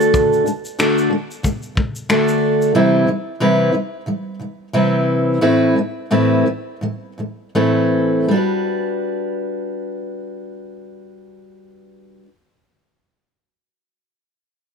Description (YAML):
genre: acoustic pop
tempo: 78-92 BPM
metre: 4/4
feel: swing 55% on 16ths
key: G major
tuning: A4 = 439 Hz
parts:
  - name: fingerpicked steel-string acoustic guitar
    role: accompaniment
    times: 0.0-12.3 s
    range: A2 to B4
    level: -16 LUFS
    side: equal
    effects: none
  - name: soft brush drum kit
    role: drums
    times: 0.0-2.7 s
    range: finger snaps, kick drum, shaker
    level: -22 LUFS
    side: left 1 dB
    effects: none
room: light reverb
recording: none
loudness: -15 LUFS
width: side -6 dB against mid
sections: 0.0-8.3 A section; 8.3-11.4 B section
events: slowing down 2.7-8.3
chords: 0.0 D; 2.7 Cmaj7; 5.4 Amadd9; 8.3 Gmaj7